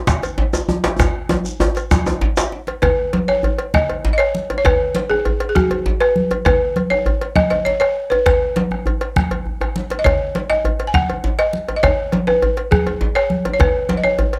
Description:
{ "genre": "west african traditional, West African drum ensemble", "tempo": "133 BPM (dotted quarters)", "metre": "12/8", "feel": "straight", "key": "B major pentatonic", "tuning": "A4 = 441 Hz", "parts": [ { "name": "bombo", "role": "percussion", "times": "0.1-14.2 s", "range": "none", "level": "-23 LUFS", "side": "equal", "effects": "none" }, { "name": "congas", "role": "percussion", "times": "0.1-14.0 s", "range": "none", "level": "-26 LUFS", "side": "equal", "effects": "none" }, { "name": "djembe", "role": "percussion", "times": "0.1-2.5 s", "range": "none", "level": "-22 LUFS", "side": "equal", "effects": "none" }, { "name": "shekere", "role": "percussion", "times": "0.1-2.5 s", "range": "none", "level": "-29 LUFS", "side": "equal", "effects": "none" }, { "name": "cowbell", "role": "percussion", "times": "0.2-14.4 s", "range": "none", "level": "-28 LUFS", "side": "equal", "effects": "none" }, { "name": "djembe", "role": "percussion", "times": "0.2-14.4 s", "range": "none", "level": "-25 LUFS", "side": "equal", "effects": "none" }, { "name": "balafon", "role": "melody", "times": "2.8-14.3 s", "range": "F#4 to G#5", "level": "-20 LUFS", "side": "equal", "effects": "none" } ], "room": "light reverb", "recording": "none", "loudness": "-18 LUFS", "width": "mono", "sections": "0.0-2.8 A section; 2.8-14.4 B section", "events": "speeding up 0.0-14.4; drum fill 1.0-2.8, 9.3-10.1", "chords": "none" }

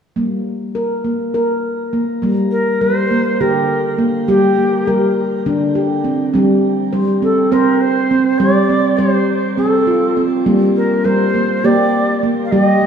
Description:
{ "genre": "world meditative, meditative tuned percussion", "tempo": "204 BPM (eighths)", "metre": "7/8", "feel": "straight", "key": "G minor", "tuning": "A4 = 440 Hz", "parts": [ { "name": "handpan", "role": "arpeggios", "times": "0.2-12.9 s", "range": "D3 to C5", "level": "-14 LUFS", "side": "right 1 dB", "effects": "shimmer reverb" }, { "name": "Native American-style cedar flute", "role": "melody", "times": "2.5-12.9 s", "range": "G4 to F5", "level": "-18 LUFS", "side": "equal", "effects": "shimmer reverb" } ], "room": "wet echo chamber reverb, RT60 1.9 s, small room reverb", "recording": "small room ambience", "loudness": "-13 LUFS", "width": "side -7 dB against mid", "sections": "0.2-2.2 A section; 2.2-12.9 B section", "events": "none", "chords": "0.2 Gm; 6.3 F/G (rootless); 10.5 Eb/G (rootless)" }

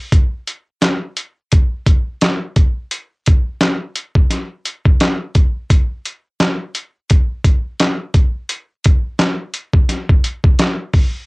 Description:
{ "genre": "hip hop", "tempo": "86 BPM", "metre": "4/4", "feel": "swing 57% on 16ths", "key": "none", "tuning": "none", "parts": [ { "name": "dusty soul sampler-style drum kit", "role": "drums", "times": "0.1-11.1 s", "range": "handclaps, hi-hat, kick drum, snare drum", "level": "-13 LUFS", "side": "equal", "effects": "overdrive, vintage 12-bit sampler grit, cassette tape" } ], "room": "little or no reverb", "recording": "home recording on cassette", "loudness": "-14 LUFS", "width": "side -29 dB against mid", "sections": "0.0-11.3 A section", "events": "none", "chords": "none" }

